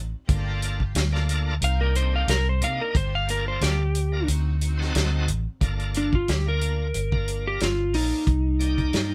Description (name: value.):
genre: straight-eighth soul blues.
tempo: 90 BPM.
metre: 4/4.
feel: swing 54% on 16ths.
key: G minor.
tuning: A4 = 440 Hz.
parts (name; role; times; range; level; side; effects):
vintage muted fingered electric bass; bass; 0.0-9.1 s; G1 to C3; -27 LUFS; equal; none.
bright tonewheel organ; accompaniment; 0.3-9.1 s; Bb3 to D5; -35 LUFS; equal; slow rotary speaker, overdrive.
rich studio string section; sustained chords; 0.3-5.1 s; Bb3 to Bb4; -43 LUFS; equal; none.
warm soul drum kit; drums; 0.3-9.1 s; hi-hat, kick drum, snare drum; -29 LUFS; equal; none.
electric slide guitar; melody; 1.6-9.1 s; D4 to F5; -29 LUFS; equal; none.
room: light reverb.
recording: band playing live in one room.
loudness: -24 LUFS.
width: mono.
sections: 0.0-5.6 A section; 5.6-9.1 B section.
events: electric slide guitar solo 0.0-5.6.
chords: 0.3 Gm7; 1.6 Cm7; 3.0 Gm7; 4.3 D7b9; 5.6 Gm7; 8.3 Cm7.